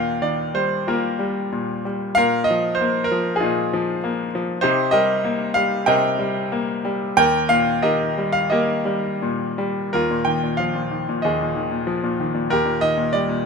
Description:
classical, lyrical solo piano; 80-100 BPM; 4/4; rubato; Eb major; A4 = 442 Hz
bright grand piano; solo; 0.0-13.5 s; Eb2 to G5; -18 LUFS; equal
moderate studio reverb, RT60 0.6 s; minimal, uncompressed stereo recording; -18 LUFS; side -5 dB against mid
0.0-9.9 A section; 9.9-13.5 B section
0.0 Ebadd9; 2.2 Bbsus4; 4.6 Cm7; 7.2 Eb; 9.9 Bb7sus4/Eb; 12.5 Cm7/Eb (rootless)
0.21 0.86 1.51 | 2.17 2.79 3.40 4.01 | 4.62 5.23 5.86 6.51 | 7.17 7.83 8.50 9.21 | 9.93 10.60 11.25 11.90 | 12.54 13.16

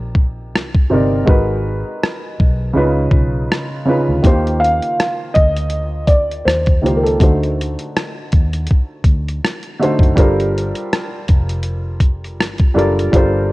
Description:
lo-fi hip hop; 81 BPM; 4/4; swing 58% on 16ths; G minor; A4 = 440 Hz
dark upright piano; accompaniment; 0.0-13.5 s; C3 to D5; -18 LUFS; equal; cassette tape, low-pass filter
vintage muted fingered electric bass; bass; 0.0-13.5 s; F1 to Eb2; -20 LUFS; equal
boom bap sampler-style drum kit; drums; 0.1-13.3 s; hi-hat, kick drum, rim click; -14 LUFS; equal; cassette tape
felt-muted upright piano; melody; 4.6-8.5 s; A4 to F5; -18 LUFS; equal; low-pass filter, cassette tape
little or no reverb; home recording on cassette; -13 LUFS; side -20 dB against mid
0.0-13.5 A section
break 0.0-4.2
0.0 Cm9; 1.3 Abm7; 2.8 C#9; 4.2 Eb69; 7.2 D7b9; 10.2 Gm11
0.54 | 1.28 2.02 2.76 3.50 | 4.24 4.98 5.72 6.46 | 7.20 7.95 8.69 9.43 | 10.17 10.91 11.65 12.39 | 13.13

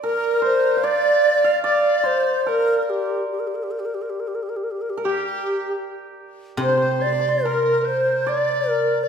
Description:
chinese traditional, Chinese chamber ensemble; 73 BPM; 4/4; straight; A4 = 439 Hz
bright low xiao; melody; 0.0-9.1 s; G4 to D5; -21 LUFS; right 1 dB
hammered dulcimer; second line; 0.0-9.1 s; G4 to F5; -26 LUFS; right 4 dB
bright reedy large dizi; second line; 0.1-9.1 s; G4 to D5; -24 LUFS; left 4 dB
guzheng; accompaniment; 6.6-9.1 s; C3; -27 LUFS; equal
wet recital hall reverb, RT60 1.5 s; minimal, uncompressed stereo recording; -18 LUFS; side -7 dB against mid
0.0-9.1 A section
| 0.03 0.83 1.65 2.47 | 3.29 4.11 4.93 5.76 | 6.60 7.43 8.26

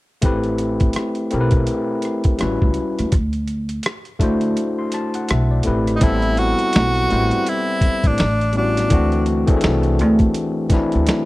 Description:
R&B, neo-soul; 83 BPM; 4/4; swing 58% on 16ths; A dorian; A4 = 440 Hz
overdriven tine electric piano; accompaniment; 0.2-11.3 s; E3 to C6; -20 LUFS; left 2 dB
upright bass; bass; 0.2-11.1 s; A1 to D#2; -20 LUFS; equal
boom bap sampler-style drum kit; drums; 0.2-11.3 s; hi-hat, kick drum, rim click, snare drum; -19 LUFS; equal
edgy tenor saxophone; melody; 6.0-9.2 s; D4 to F#4; -20 LUFS; right 1 dB
little or no reverb; dry, close 1970s-style studio recording; -16 LUFS; side -19 dB against mid
0.2-6.0 A section; 6.0-11.3 B section
kick muted 4.6-6.0
0.2 Am9; 2.4 A13; 3.1 D9; 5.7 Am9; 8.2 A13; 8.9 D9
| 0.23 0.95 1.68 2.40 | 3.12 3.85 4.57 5.29 | 6.01 6.74 7.46 8.18 | 8.91 9.63 10.35 11.07

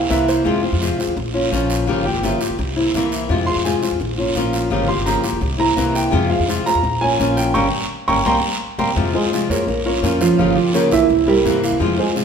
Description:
latin, Cuban son and guajira; 169 BPM; 4/4; straight; F harmonic minor; A4 = 440 Hz
flamenco guitar; accompaniment; 0.0-12.2 s; C3 to G4; -19 LUFS; left 2 dB
warm grand piano; arpeggios; 0.0-12.2 s; E3 to Db6; -19 LUFS; right 4 dB
upright bass; bass; 0.0-12.0 s; F1 to G2; -24 LUFS; left 1 dB
guiro; percussion; 0.1-12.2 s; -29 LUFS; right 4 dB
wet large studio reverb, RT60 1.2 s; band playing live in one room; -16 LUFS; side -6 dB against mid
0.0-9.0 A section; 9.0-12.2 B section
grand piano solo 0.0-9.0; band accent 7.5-9.0
0.5 Fm; 1.2 Bbm; 1.9 Gm7b5; 2.6 C7; 3.3 Fm; 4.0 Bbm; 4.7 Gm7b5; 5.4 C7; 6.1 Fm; 6.8 Bbm; 7.5 Gdim; 8.3 C5; 9.0 Fm; 9.7 Bbm; 10.4 Gm7b5; 11.1 C7
0.10 | 0.46 0.81 1.17 1.52 | 1.88 2.23 2.58 2.94 | 3.29 3.65 4.00 4.36 | 4.71 5.07 5.42 5.77 | 6.13 6.48 6.84 7.19 | 7.55 7.90 8.26 8.61 | 8.97 9.32 9.68 10.03 | 10.39 10.74 11.10 11.45 | 11.81 12.16

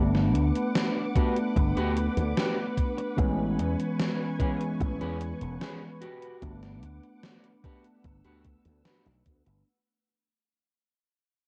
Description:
vaporwave; 74 BPM; 4/4; straight; A4 = 440 Hz
bright tine electric piano; accompaniment; 0.0-9.7 s; E3 to D4; -33 LUFS; equal; analog chorus, analog delay
soft string machine; sustained chords; 0.0-9.6 s; B4 to E6; -40 LUFS; equal; ensemble chorus, vintage 12-bit sampler grit
electric guitar at the edge of break-up; riff; 0.0-9.5 s; C#4 to B4; -40 LUFS; equal; lush chorus, analog delay
slap bass with an envelope filter; bass; 0.0-9.6 s; E1 to E2; -31 LUFS; equal; tube saturation
gated 80s digital drum machine; drums; 0.1-9.6 s; hi-hat, snare drum; -35 LUFS; equal; gated reverb, gated reverb snare
electronic kick drum; drums; 1.2-9.4 s; -29 LUFS; equal
little or no reverb; worn, warbling old tape, cassette tape, warbly pitch drift; -28 LUFS; mono
0.0-9.7 A section
fade-out 0.0-9.7
0.0 Gmaj7; 3.2 Amaj9; 6.0 Gmaj7
0.75 1.56 2.37 | 3.18 3.99 4.80 5.61 | 6.42 7.24 8.05 8.86

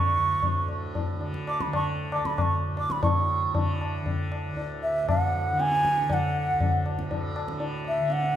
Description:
indian classical, Hindustani; 117 BPM; 3/4; straight; D raga yaman; A4 = 440 Hz
mellow bansuri; melody; 0.0-8.4 s; E5 to D6; -26 LUFS; right 2 dB
tanpura; drone; 0.0-8.4 s; D2 to D3; -32 LUFS; equal
tabla; percussion; 0.4-8.4 s; -28 LUFS; left 2 dB
wet recital hall reverb, RT60 1.4 s; recorded in a church or concert hall; -24 LUFS; side -10 dB against mid
0.0-3.0 A section; 3.0-8.4 B section
speeding up 0.0-8.4
0.43 0.95 | 1.48 2.00 2.52 | 3.04 3.55 4.07 | 4.58 5.09 5.60 | 6.10 6.61 7.11 | 7.61 8.10

